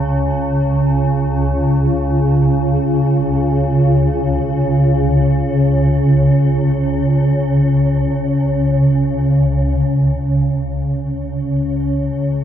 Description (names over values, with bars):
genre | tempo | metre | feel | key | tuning
ambient | free time | none | none | unclear | A4 = 440 Hz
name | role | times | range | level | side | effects
swarming drone | solo | 0.0-12.4 s | C#2 to C#3 | -13 LUFS | equal | built-in reverb, tape echo
room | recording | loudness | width
wet cathedral reverb, RT60 5.7 s | dark, warm production | -13 LUFS | side -10 dB against mid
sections
0.0-9.3 A section; 9.3-12.4 B section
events
none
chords
none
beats
free time